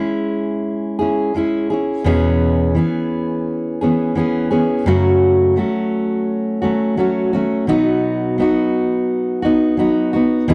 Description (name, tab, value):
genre	pop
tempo	85 BPM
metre	4/4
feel	straight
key	unclear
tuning	A4 = 440 Hz
part	fingerpicked steel-string acoustic guitar	solo	0.0-10.5 s	E2 to G#4	-18 LUFS	equal	slapback echo
room	light reverb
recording	dry, close 1970s-style studio recording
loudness	-18 LUFS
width	mono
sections	0.0-10.5 A section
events	none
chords	0.0 C#m; 2.1 E6; 4.9 F#m; 7.7 B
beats	0.64 1.35 | 2.05 2.75 3.46 4.16 | 4.87 5.57 6.27 6.98 | 7.68 8.38 9.09 9.79 | 10.49